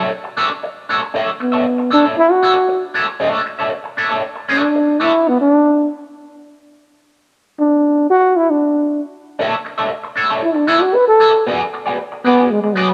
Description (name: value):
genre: funk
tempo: 116 BPM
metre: 4/4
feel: straight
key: B dorian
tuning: A4 = 441 Hz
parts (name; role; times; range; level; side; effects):
- breathy trombone; melody; 0.0-12.9 s; F#3 to B4; -15 LUFS; equal; none
- electric guitar at the edge of break-up; accompaniment; 0.0-5.2, 9.4-12.9 s; B3 to E5; -20 LUFS; equal; wah
room: moderate echo chamber reverb, RT60 2.2 s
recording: none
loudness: -16 LUFS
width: mono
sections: 0.0-11.5 A section; 11.5-12.9 B section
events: trombone solo 0.0-11.5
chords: 0.0 Bm11 (rootless); 11.5 Bm6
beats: 0.12 0.64 | 1.15 1.67 2.18 2.70 | 3.21 3.73 4.24 4.76 | 5.27 5.79 6.30 6.82 | 7.34 7.85 8.37 8.88 | 9.40 9.92 10.43 10.95 | 11.47 11.98 12.50